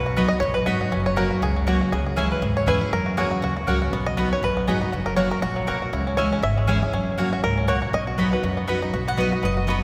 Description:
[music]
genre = bluegrass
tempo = 240 BPM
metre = 4/4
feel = swing 56% on 8ths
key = B major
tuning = A4 = 440 Hz
[part]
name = bluegrass banjo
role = melody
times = 0.0-9.8 s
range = F#3 to E5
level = -28 LUFS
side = equal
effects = none
[part]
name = picked steel-string acoustic guitar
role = accompaniment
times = 0.0-9.8 s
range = F#2 to F#4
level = -27 LUFS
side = equal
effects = none
[part]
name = upright bass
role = bass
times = 0.0-9.8 s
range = F#1 to F#2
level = -29 LUFS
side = equal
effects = none
[part]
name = mandolin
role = stabs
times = 0.2-9.8 s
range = A#3 to B5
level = -32 LUFS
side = equal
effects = none
[part]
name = mandolin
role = melody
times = 9.1-9.8 s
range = B4 to F#5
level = -30 LUFS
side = equal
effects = none
[sound]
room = wet cathedral reverb, RT60 5.2 s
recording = recorded in a church or concert hall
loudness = -23 LUFS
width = mono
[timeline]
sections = 0.9-8.9 A section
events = five-string banjo solo 0.0-8.9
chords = 0.0 B; 0.9 F#; 1.9 C#m; 2.9 F#; 3.9 B; 4.9 F#; 5.9 C#m; 6.9 F#; 7.9 B

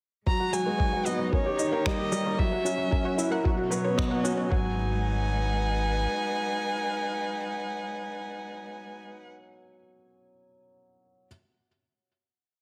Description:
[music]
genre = piano and strings electronica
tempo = 113 BPM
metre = 4/4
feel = straight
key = G# minor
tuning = A4 = 438 Hz
[part]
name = dark violin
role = melody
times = 0.3-9.0 s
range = C#5 to A#5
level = -34 LUFS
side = equal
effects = none
[part]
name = dark string quartet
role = sustained chords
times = 0.3-9.3 s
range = B2 to F#5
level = -37 LUFS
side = equal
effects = sidechain pumping
[part]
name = analog pluck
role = arpeggios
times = 0.3-4.8 s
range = F#4 to G5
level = -39 LUFS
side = equal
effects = chorus, sidechain pumping, delay
[part]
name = felt-muted upright piano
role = riff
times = 0.3-11.3 s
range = F#3 to G4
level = -33 LUFS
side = equal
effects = none
[part]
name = round analog bass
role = bass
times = 0.3-6.1 s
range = D#1 to B1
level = -35 LUFS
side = equal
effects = sidechain pumping, high-pass filter
[part]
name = electronic kick drum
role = drums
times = 0.3-4.6 s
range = none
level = -30 LUFS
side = equal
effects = none
[part]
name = electronic shaker and finger snaps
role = drums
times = 0.5-4.4 s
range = none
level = -37 LUFS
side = equal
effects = high-pass filter on perc, high-pass filter on snare, high-pass filter on room
[sound]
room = moderate recital hall reverb, RT60 1.5 s, small room ambience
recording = none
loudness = -28 LUFS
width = mono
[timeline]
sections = 0.3-4.5 build; 4.5-8.8 final chord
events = build-up 0.3-4.5; filter sweep on synth arpeggio sound 0.3-4.5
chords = 0.3 G#m7; 1.3 D#7; 2.4 F#7; 3.5 Badd9; 4.5 G#m7

